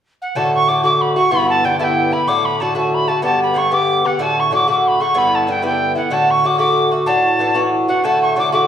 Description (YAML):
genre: celtic folk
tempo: 125 BPM (dotted quarters)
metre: 6/8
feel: straight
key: D major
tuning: A4 = 438 Hz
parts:
  - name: wooden whistle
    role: melody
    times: 0.2-8.7 s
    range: F#5 to D6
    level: -17 LUFS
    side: equal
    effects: none
  - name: Irish bouzouki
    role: accompaniment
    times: 0.4-8.7 s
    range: G2 to G4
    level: -16 LUFS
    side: equal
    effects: none
room: wet recital hall reverb, RT60 1.3 s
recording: recorded in a church or concert hall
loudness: -13 LUFS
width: side -9 dB against mid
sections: 0.4-8.0 A section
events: none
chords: 0.4 D; 1.3 Em7; 2.3 D; 3.2 G; 4.2 D; 5.1 Em7; 6.1 D; 7.1 Dadd9; 8.0 D